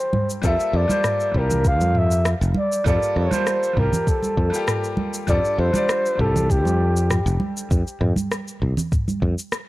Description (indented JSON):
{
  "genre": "sunset chillout",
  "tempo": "99 BPM",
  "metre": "4/4",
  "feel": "swing 53% on 16ths",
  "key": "F major",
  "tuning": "A4 = 441 Hz",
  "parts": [
    { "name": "breathy flugelhorn", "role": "melody", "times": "0.0-7.4 s", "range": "G4 to F5", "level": "-23 LUFS", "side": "equal", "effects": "analog delay" },
    { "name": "bright baby grand piano", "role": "accompaniment", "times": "0.0-7.7 s", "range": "G3 to D5", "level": "-29 LUFS", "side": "moving between left 5 dB and right 6 dB", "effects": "auto-pan, tape echo" },
    { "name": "smooth R&B drum kit", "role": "drums", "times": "0.1-9.7 s", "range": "rim click, shaker, toms", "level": "-26 LUFS", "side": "equal", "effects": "none" },
    { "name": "congas", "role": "percussion", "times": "0.1-9.2 s", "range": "none", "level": "-27 LUFS", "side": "right 2 dB", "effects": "none" },
    { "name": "sustaining fretless electric bass", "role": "bass", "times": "0.4-9.3 s", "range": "F1 to F2", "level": "-20 LUFS", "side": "equal", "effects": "tube saturation" },
    { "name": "electronic kick drum", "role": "drums", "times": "0.4-9.4 s", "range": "none", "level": "-22 LUFS", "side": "equal", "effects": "none" }
  ],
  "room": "little or no reverb",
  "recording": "dry, gritty hardware recording",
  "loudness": "-18 LUFS",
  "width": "side -18 dB against mid",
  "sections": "0.0-9.7 A section",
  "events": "none",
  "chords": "0.4 Gm9; 5.3 F69",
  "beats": "| 0.44 1.04 1.65 2.25 | 2.86 3.47 4.07 4.68 | 5.29 5.89 6.50 7.10 | 7.71 8.32 8.92 9.53"
}